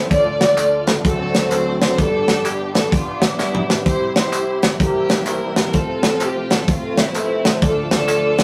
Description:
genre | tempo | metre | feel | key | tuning
uptempo gospel | 128 BPM | 4/4 | swing 64% on 8ths | C major | A4 = 436 Hz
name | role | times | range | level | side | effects
warm chamber string section | melody | 0.0-8.4 s | G3 to D5 | -22 LUFS | equal | none
warm upright piano | accompaniment | 0.0-8.4 s | G1 to D5 | -28 LUFS | equal | none
tonewheel organ | sustained chords | 0.0-8.4 s | C3 to A4 | -30 LUFS | equal | slow rotary speaker, overdrive, chorus vibrato
tight funk drum kit | drums | 0.1-8.4 s | hi-hat, kick drum, snare drum, toms | -20 LUFS | equal | none
tambourine and handclaps | percussion | 0.1-8.4 s | none | -33 LUFS | equal | none
room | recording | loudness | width
wet studio reverb, RT60 0.6 s | rough rehearsal-room recording, small room ambience | -18 LUFS | mono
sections
0.0-8.4 A section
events
drum fill 3.4-3.9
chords
0.1 Dm; 1.0 D7; 2.0 G; 3.9 C; 4.8 C7; 5.7 F/C; 7.6 Dm

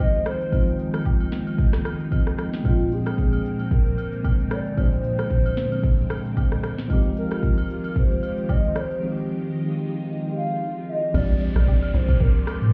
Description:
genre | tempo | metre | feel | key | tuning
amapiano | 113 BPM | 4/4 | swing 55% on 16ths | F dorian | A4 = 438 Hz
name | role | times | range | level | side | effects
hollow clarinet-like synth lead | melody | 0.0-12.7 s | F4 to F5 | -32 LUFS | equal | chorus, delay
tine electric piano | accompaniment | 0.0-12.7 s | Bb2 to G5 | -29 LUFS | equal | none
phased string machine | sustained chords | 0.0-12.7 s | D3 to C6 | -35 LUFS | equal | ensemble chorus, phaser, sidechain pumping
afro-pop drum kit | drums | 0.0-12.7 s | crash cymbal, hi-hat, kick drum, rim click, shaker, snare drum, toms | -24 LUFS | equal | none
agogo bells and woodblock | percussion | 0.0-12.6 s | none | -43 LUFS | equal | none
swell and downlifter | sound effects | 9.6-12.7 s | none | -46 LUFS | equal | none
tight log drum bass | bass | 11.1-12.5 s | Bb1 to C2 | -24 LUFS | equal | none
room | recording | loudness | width
light reverb, digital ambience | heard muffled through a wall, club reverb, EQ | -23 LUFS | mono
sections
0.0-11.1 A section; 11.1-12.7 B section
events
break 9.0-11.1; swell 9.6-11.1; drop 11.1-12.7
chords
0.0 Fm9; 2.6 Bb13; 6.9 Fm9; 11.1 Bb13

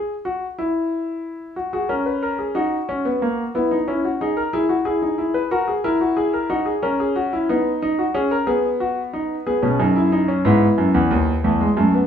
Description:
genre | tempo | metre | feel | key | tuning
classical, baroque-style 4-part fugue for grand piano | 61 BPM (dotted quarters) | 12/8 | straight | E major | A4 = 441 Hz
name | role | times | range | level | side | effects
warm concert grand piano | solo | 0.0-12.1 s | D#2 to B4 | -18 LUFS | left 1 dB | none
room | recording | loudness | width
moderate stone room reverb, RT60 1.1 s | small room ambience | -18 LUFS | side -8 dB against mid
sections
0.0-12.1 A section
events
none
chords
0.0 N.C.; 1.6 B5; 3.5 E/B; 5.5 F#7; 7.5 B; 9.5 E; 11.4 A5/E

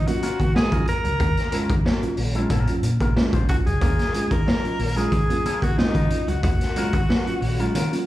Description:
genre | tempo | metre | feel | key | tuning
funk | 92 BPM | 4/4 | straight | Eb minor | A4 = 442 Hz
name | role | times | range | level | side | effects
breathy tenor saxophone | melody | 0.0-8.1 s | Eb4 to Bb4 | -27 LUFS | left 1 dB | slapback echo
vintage muted fingered electric bass | bass | 0.0-7.9 s | Bb1 to Eb3 | -25 LUFS | equal | none
electric guitar with an envelope filter | accompaniment | 0.1-7.9 s | Gb3 to C5 | -34 LUFS | left 4 dB | slapback echo
semi-hollow electric guitar | riff | 0.1-8.0 s | Gb3 to Bb3 | -31 LUFS | right 2 dB | slapback echo
mellow tine electric piano | stabs | 0.1-8.1 s | Eb3 to F4 | -30 LUFS | right 2 dB | medium stereo tremolo, slapback echo
raw garage drum kit | drums | 0.1-8.1 s | hi-hat, kick drum, snare drum | -22 LUFS | equal | none
room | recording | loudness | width
light reverb, small room ambience | live gig heard through the venue's PA, club ambience | -19 LUFS | side -15 dB against mid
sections
0.0-8.1 A section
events
none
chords
0.0 Ebm9

